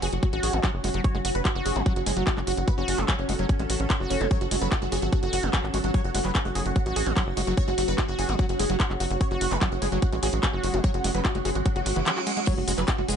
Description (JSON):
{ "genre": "psychedelic trance", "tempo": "147 BPM", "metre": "4/4", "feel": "straight", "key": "F# minor", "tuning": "A4 = 438 Hz", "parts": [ { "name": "supersaw stab", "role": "melody", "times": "0.0-13.1 s", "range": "C#4 to C#5", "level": "-30 LUFS", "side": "right 1 dB", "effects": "phaser, sidechain pumping, tape echo" }, { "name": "evolving wavetable pad", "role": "sustained chords", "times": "0.0-13.2 s", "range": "F#3 to A4", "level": "-35 LUFS", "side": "right 3 dB", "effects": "ensemble chorus, built-in reverb, phaser, sidechain pumping" }, { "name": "screaming distorted acid line", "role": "riff", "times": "0.0-13.2 s", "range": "E3 to F#4", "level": "-33 LUFS", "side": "equal", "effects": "distortion, chorus, auto-pan, sidechain pumping, tape echo" }, { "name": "tight sequencer bass", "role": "bass", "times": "0.0-13.2 s", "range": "F#1 to A1", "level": "-29 LUFS", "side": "equal", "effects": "none" }, { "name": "garage drum kit", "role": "drums", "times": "0.0-13.2 s", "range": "crash cymbal, handclaps, hi-hat", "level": "-30 LUFS", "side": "equal", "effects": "none" }, { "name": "ethereal airy pad", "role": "texture", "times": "0.0-13.2 s", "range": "C#4 to G#5", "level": "-34 LUFS", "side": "equal", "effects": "ensemble chorus, built-in reverb, sidechain pumping" }, { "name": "electronic kick drum", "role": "drums", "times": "0.2-13.0 s", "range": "none", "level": "-24 LUFS", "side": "equal", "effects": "none" }, { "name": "reverse cymbal", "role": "sound effects", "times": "11.8-12.5 s", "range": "none", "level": "-34 LUFS", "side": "right 6 dB", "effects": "none" }, { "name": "tube shaker", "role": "percussion", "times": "12.5-13.2 s", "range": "none", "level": "-35 LUFS", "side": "left 3 dB", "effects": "none" } ], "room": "little or no reverb", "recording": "nothing above 10.4 kHz", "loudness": "-23 LUFS", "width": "side -8 dB against mid", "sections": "0.0-13.2 A section", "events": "reverse cymbal 11.8-12.5", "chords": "0.0 F#5" }